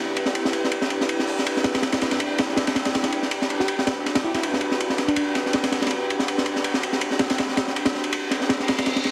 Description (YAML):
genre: drum and bass, jungle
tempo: 162 BPM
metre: 4/4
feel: swing 54% on 16ths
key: unclear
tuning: A4 = 440 Hz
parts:
  - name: warbly tape-like pad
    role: sustained chords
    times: 0.0-9.1 s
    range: D4 to B4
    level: -30 LUFS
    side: equal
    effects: chorus, built-in reverb, vintage 12-bit sampler grit
  - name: crunchy breakbeat drum kit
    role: drums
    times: 0.2-9.1 s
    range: hi-hat, ride cymbal, snare drum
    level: -25 LUFS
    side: equal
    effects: high-pass filter on kick, high-pass filter on cymbals, high-pass filter on hats, high-pass filter on snare, high-pass filter on room
  - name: bell-like FM electric piano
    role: melody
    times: 3.6-5.2 s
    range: D4 to G4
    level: -32 LUFS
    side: equal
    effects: chorus, dub echo
  - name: reverse cymbal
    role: sound effects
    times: 8.6-9.1 s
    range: none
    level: -30 LUFS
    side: equal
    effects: none
room: wet lush hall reverb, RT60 1.9 s, small room ambience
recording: heavily compressed radio sound, multiband compression, vinyl crackle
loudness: -23 LUFS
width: mono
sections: 0.0-9.1 A section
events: reverse cymbal 8.6-9.1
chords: 0.0 Em7; 3.3 Gmaj7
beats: | 0.35 0.72 1.09 1.46 | 1.83 2.20 2.57 2.94 | 3.31 3.68 4.05 4.42 | 4.79 5.17 5.54 5.91 | 6.28 6.65 7.02 7.39 | 7.76 8.13 8.50 8.87